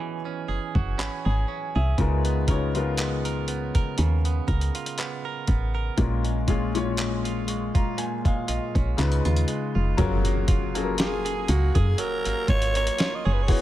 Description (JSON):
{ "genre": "contemporary R&B", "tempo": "60 BPM", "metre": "4/4", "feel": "swing 54% on 16ths", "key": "F# major", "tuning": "A4 = 442 Hz", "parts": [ { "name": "warm concert grand piano", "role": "accompaniment", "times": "0.0-13.6 s", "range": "A#2 to C#6", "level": "-29 LUFS", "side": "left 5 dB", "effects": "none" }, { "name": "direct-recorded clean electric guitar", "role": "arpeggios", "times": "0.0-13.6 s", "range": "A#2 to A#4", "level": "-32 LUFS", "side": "right 8 dB", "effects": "tape echo" }, { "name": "woody FM bass", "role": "bass", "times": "0.5-13.6 s", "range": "E1 to F#2", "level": "-25 LUFS", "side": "equal", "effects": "none" }, { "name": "dusty soul sampler-style drum kit", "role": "drums", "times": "0.8-13.6 s", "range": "handclaps, hi-hat, kick drum, snare drum", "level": "-25 LUFS", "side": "equal", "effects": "none" }, { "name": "impact", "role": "sound effects", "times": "10.0-13.6 s", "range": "none", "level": "-34 LUFS", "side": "equal", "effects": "none" }, { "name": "growling alto saxophone", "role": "melody", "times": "11.0-13.5 s", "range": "F#4 to D#5", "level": "-27 LUFS", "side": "equal", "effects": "tape echo" } ], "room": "digital ambience", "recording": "none", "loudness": "-22 LUFS", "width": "side -14 dB against mid", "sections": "0.0-10.0 A section; 10.0-13.6 B section", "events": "impact 10.0-13.6", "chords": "0.0 E69; 2.0 C#13; 6.0 A#m7; 9.0 C#7; 10.0 F#maj9" }